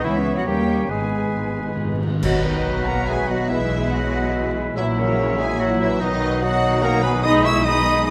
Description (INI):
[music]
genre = classical, dramatic, fast romantic movement for symphony orchestra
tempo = 143 BPM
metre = 3/4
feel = rubato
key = B major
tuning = A4 = 440 Hz
[part]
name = dark symphonic violin section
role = melody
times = 0.0-8.1 s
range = G#4 to E6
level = -31 LUFS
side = equal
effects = none
[part]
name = bright clarinet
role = second line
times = 0.0-8.1 s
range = C#4 to E5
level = -31 LUFS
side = equal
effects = none
[part]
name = hollow concert flute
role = second line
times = 0.0-8.1 s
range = A#4 to C#6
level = -30 LUFS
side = equal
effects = none
[part]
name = rich symphonic violin section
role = second line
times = 0.0-8.1 s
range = C#4 to G#5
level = -36 LUFS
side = equal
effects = none
[part]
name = warm oboe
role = second line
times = 0.0-8.1 s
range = B4 to E5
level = -31 LUFS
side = equal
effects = none
[part]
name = warm bassoon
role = accompaniment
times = 0.0-8.1 s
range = F#3 to B3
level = -31 LUFS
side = equal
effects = none
[part]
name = warm symphonic viola section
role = accompaniment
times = 0.0-8.1 s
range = F#3 to G#4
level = -32 LUFS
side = equal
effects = none
[part]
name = warm French horn section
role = sustained chords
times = 0.0-8.1 s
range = C#3 to E4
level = -30 LUFS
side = equal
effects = none
[part]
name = concert harp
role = arpeggios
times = 0.0-8.1 s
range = G#2 to G#5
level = -34 LUFS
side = equal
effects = none
[part]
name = rich studio cello section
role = bass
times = 0.0-8.1 s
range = A#2 to G#3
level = -29 LUFS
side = equal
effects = none
[part]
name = warm symphonic double bass section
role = bass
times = 0.0-8.1 s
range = G#1 to D#2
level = -30 LUFS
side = equal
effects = none
[part]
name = timpani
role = percussion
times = 0.9-2.2 s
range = G#2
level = -29 LUFS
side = equal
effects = none
[part]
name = clear trombone section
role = sustained chords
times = 2.2-8.1 s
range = D#3 to B3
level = -34 LUFS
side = equal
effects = none
[part]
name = clash cymbals and concert bass drum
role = percussion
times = 2.2-3.0 s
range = none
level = -33 LUFS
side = equal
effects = none
[sound]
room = moderate scoring stage reverb, RT60 1.8 s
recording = close, detailed microphones, vinyl crackle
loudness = -20 LUFS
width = mono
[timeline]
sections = 0.0-2.2 A section; 2.2-8.1 B section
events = timpani fill 0.9-2.2; band accent 2.2-2.7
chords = 0.0 C#m7; 0.5 D#7; 0.9 G#m; 2.2 B; 3.5 E/B; 4.8 F#7/A#; 6.0 B; 7.2 G#m/B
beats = 0.05 0.47 | 0.90 1.34 1.79 | 2.24 2.66 3.09 | 3.50 3.92 4.35 | 4.77 5.18 5.60 | 6.01 6.43 6.83 | 7.25 7.66 8.07